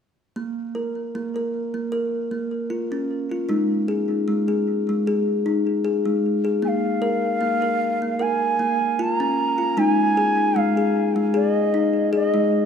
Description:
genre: world meditative, meditative tuned percussion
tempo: 76 BPM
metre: 4/4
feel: swing 54% on 16ths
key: Bb minor pentatonic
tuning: A4 = 439 Hz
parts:
  - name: kalimba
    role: arpeggios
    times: 0.4-12.7 s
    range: Ab3 to Bb4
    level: -21 LUFS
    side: left 2 dB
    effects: ping-pong delay
  - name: bright reedy bansuri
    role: melody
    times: 6.6-12.7 s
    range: Eb5 to Bb5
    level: -22 LUFS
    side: right 2 dB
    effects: ping-pong delay
room: wet echo chamber reverb, RT60 1.6 s, studio ambience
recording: none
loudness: -20 LUFS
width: side -7 dB against mid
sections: 0.4-6.6 A section; 6.6-12.7 B section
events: none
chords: 0.4 Bbm; 3.5 Ab5; 6.6 Bbm; 9.8 Ab5

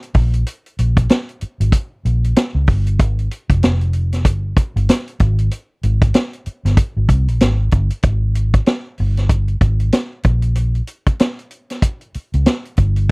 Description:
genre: lush 1970s-style soul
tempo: 95 BPM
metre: 4/4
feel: swing 58% on 16ths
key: unclear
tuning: A4 = 441 Hz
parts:
  - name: vintage drum kit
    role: drums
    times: 0.0-13.1 s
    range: hi-hat, kick drum, snare drum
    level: -14 LUFS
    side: equal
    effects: none
  - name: vintage muted fingered electric bass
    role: bass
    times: 0.2-13.1 s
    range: F1 to Db2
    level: -16 LUFS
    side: equal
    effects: none
room: little or no reverb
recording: dry, close 1970s-style studio recording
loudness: -14 LUFS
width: side -38 dB against mid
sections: 0.0-8.0 A section; 8.0-13.1 B section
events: none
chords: none

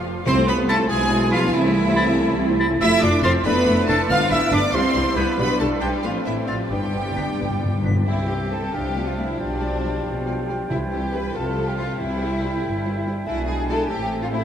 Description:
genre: quick classical-period movement for symphony orchestra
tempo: 93 BPM (dotted quarters)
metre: 6/8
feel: rubato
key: C major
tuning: A4 = 445 Hz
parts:
  - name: rich symphonic violin section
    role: melody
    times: 0.0-14.4 s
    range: C5 to F6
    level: -30 LUFS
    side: equal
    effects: none
  - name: bright clarinet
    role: second line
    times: 0.0-14.4 s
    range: C4 to F4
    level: -32 LUFS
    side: right 3 dB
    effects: none
  - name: mellow cor anglais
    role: second line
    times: 0.0-14.3 s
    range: E4 to A5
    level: -29 LUFS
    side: right 3 dB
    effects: none
  - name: silver concert flute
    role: second line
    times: 0.0-14.4 s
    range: D5 to B6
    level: -32 LUFS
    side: left 4 dB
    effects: none
  - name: warm studio violin section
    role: second line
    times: 0.0-14.4 s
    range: D4 to F5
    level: -27 LUFS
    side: left 1 dB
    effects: none
  - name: dark studio viola section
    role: accompaniment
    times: 0.0-14.4 s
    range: F3 to F4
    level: -29 LUFS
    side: left 1 dB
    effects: none
  - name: dark French horn section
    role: sustained chords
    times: 0.0-14.4 s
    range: E3 to G4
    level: -26 LUFS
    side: equal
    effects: none
  - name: rich studio cello section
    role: bass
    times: 0.0-14.4 s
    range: G2 to F4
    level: -28 LUFS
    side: equal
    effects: none
  - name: warm studio double bass section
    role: bass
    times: 0.0-14.4 s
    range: F1 to C2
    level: -26 LUFS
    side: right 1 dB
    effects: none
  - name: timpani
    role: percussion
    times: 0.3-0.9, 4.1-4.7, 6.7-8.7, 10.7-12.6 s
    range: G2 to C3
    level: -28 LUFS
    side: left 1 dB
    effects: none
room: wet huge ambient reverb, RT60 7.7 s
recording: in a vast, echoing space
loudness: -18 LUFS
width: side -9 dB against mid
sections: 0.0-8.1 A section; 8.1-14.4 B section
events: timpani fill 6.7-8.1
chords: 0.3 Am/C; 0.9 E7/B; 1.5 Am/C; 2.8 F; 3.5 Dm; 4.1 G7; 4.7 C; 5.4 G; 6.0 F/A; 6.7 G; 8.1 C; 8.7 Dm7/C; 9.4 G7/B; 10.7 C; 11.4 F/C; 12.0 C; 13.3 E7/B; 13.9 Am

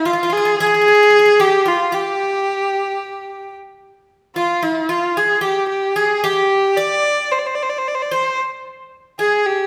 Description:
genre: Turkish makam ensemble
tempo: 224 BPM (eighths)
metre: 9/8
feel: straight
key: G makam hicaz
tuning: A4 = 440 Hz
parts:
  - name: warm kamancheh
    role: melody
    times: 0.0-9.7 s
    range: E4-37c to D5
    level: -18 LUFS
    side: equal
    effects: none
  - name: Greek bouzouki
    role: second line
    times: 0.0-9.7 s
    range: E4-40c to D5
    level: -24 LUFS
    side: equal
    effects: none
room: wet recital hall reverb, RT60 1.6 s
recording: none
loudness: -17 LUFS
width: mono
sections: 0.0-9.7 A section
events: none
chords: none

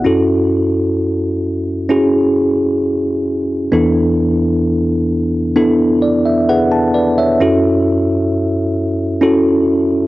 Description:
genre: pop ballad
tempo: 66 BPM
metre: 4/4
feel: straight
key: F# minor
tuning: A4 = 440 Hz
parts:
  - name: bell-like tine electric piano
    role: solo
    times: 0.0-10.1 s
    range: E2 to A5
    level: -12 LUFS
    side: equal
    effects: medium stereo tremolo, cassette tape
room: light reverb, digital ambience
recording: home recording on cassette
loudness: -12 LUFS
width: side -18 dB against mid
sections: 0.0-10.1 A section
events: tine electric piano fill 5.6-7.4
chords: 0.1 F#m7; 3.7 E7sus4; 7.4 F#m7

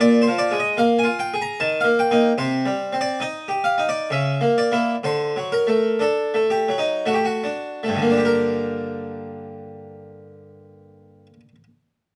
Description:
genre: classical, baroque-style suite movement for harpsichord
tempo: 48-78 BPM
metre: 3/4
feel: rubato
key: G minor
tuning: A4 = 440 Hz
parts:
  - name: harpsichord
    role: solo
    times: 0.0-11.6 s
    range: G2 to Bb5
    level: -21 LUFS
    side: equal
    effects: none
room: light reverb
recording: dark, warm production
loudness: -21 LUFS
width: mono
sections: 0.0-8.2 A section; 8.2-11.8 B section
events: slowing down 1.2-8.2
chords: 0.0 Bb5; 1.6 Eb; 2.4 Cm; 4.1 C#m6; 5.0 D; 8.2 Gm

